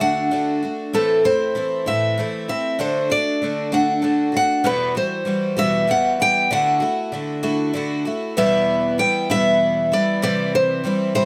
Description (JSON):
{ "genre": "acoustic folk duo or small band", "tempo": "64 BPM (dotted quarters)", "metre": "6/8", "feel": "straight", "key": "unclear", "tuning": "A4 = 440 Hz", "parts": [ { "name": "picked steel-string acoustic guitar", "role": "melody", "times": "0.0-11.3 s", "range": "A4 to G5", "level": "-22 LUFS", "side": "equal", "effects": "none" }, { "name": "picked twelve-string acoustic guitar", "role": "accompaniment", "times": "0.0-11.3 s", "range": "E2 to F#4", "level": "-24 LUFS", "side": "equal", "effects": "none" } ], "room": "light reverb", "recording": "close, detailed microphones", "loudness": "-20 LUFS", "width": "mono", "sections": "0.0-8.4 A section; 8.4-11.3 B section", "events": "none", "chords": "0.0 D; 0.9 Am; 2.8 D; 4.7 Emadd9; 6.5 Dadd9; 8.4 Em; 10.2 C" }